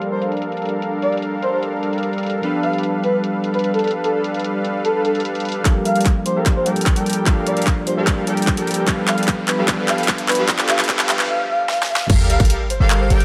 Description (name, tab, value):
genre	future bass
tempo	149 BPM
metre	4/4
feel	half-time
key	G minor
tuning	A4 = 441 Hz
part	bell-like tine electric piano	accompaniment	0.0-12.1 s	F3 to G4	-28 LUFS	equal	phaser, sidechain pumping
part	soft supersaw	riff	0.0-13.2 s	G3 to G5	-25 LUFS	equal	sidechain pumping, low-pass filter
part	big-room dance drum kit	drums	0.0-13.2 s	crash cymbal, handclaps, hi-hat, snare drum	-25 LUFS	equal	overdrive, high-pass filter on hats, low-pass filter on hats, high-pass filter on cymbals, low-pass filter on cymbals, high-pass filter on snare, low-pass filter on snare
part	breathy flute-like synth lead	melody	0.1-13.1 s	A4 to F5	-25 LUFS	equal	lush chorus, sidechain pumping, delay
part	electronic kick drum	drums	5.7-12.5 s	none	-20 LUFS	equal	overdrive
part	riser and sub drop	sound effects	7.9-13.2 s	none	-30 LUFS	equal	none
part	airy dreamy lead	arpeggios	12.1-13.2 s	F5 to G5	-31 LUFS	equal	chorus, sidechain pumping
part	warm 808-style bass	bass	12.1-13.2 s	G1	-18 LUFS	equal	tube saturation, sidechain pumping
room	moderate lush hall reverb, RT60 2.5 s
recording	high-pass filter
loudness	-19 LUFS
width	mono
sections	0.0-5.7 A section; 5.7-12.1 B section; 12.1-13.2 C section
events	filter sweep on supersaw synth 0.0-5.7, 5.7-12.1; build-up 5.7-12.1; drum fill 5.7-11.3, 11.7-12.1; filter sweep 5.7-12.1; break 11.3-12.1; drop 12.1-13.2; impact 12.1-13.2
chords	0.0 Gm7; 2.4 G7; 5.7 Gm7; 8.9 G7; 12.1 Gm7